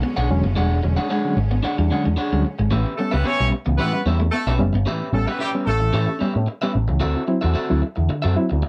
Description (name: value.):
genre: funk.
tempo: 112 BPM.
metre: 4/4.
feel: straight.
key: unclear.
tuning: A4 = 440 Hz.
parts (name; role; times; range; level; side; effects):
electric guitar at the edge of break-up; accompaniment; 0.0-8.7 s; C4 to F#5; -28 LUFS; equal; none.
rich studio string section; sustained chords; 0.0-2.7 s; D3 to C#4; -36 LUFS; equal; none.
clean electric guitar; riff; 0.0-4.8 s; G3 to B3; -30 LUFS; equal; analog chorus.
picked electric bass with an envelope filter; bass; 0.2-8.6 s; E1 to A2; -22 LUFS; equal; none.
reed electric piano; stabs; 0.3-8.6 s; A2 to E4; -26 LUFS; equal; overdrive, fast tremolo.
clear horn section; second line; 3.0-6.2 s; G3 to C#5; -26 LUFS; equal; none.
room: light reverb.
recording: none.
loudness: -21 LUFS.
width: mono.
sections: 0.0-2.7 A section; 2.7-8.7 B section.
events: none.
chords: 0.0 E13; 2.7 A9; 7.0 D9.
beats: 0.03 | 0.57 1.11 1.64 2.18 | 2.72 3.26 3.79 4.33 | 4.87 5.41 5.94 6.48 | 7.02 7.56 8.10 8.63.